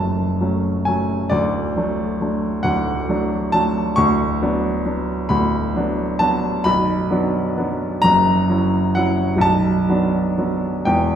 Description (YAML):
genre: classical, romantic nocturne for solo piano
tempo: 44 BPM (dotted quarters)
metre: 6/8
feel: rubato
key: B minor from 4.0 s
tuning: A4 = 440 Hz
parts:
  - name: warm grand piano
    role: solo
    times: 0.0-11.2 s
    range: B0 to C#6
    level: -17 LUFS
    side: equal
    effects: none
room: wet recital hall reverb, RT60 1.4 s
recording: heard from further back in the room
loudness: -17 LUFS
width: side -9 dB against mid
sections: 0.0-11.2 A section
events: none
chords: 0.0 F#m; 1.3 D; 4.0 Bm/D; 6.7 Bm; 8.0 F#7; 9.4 Bm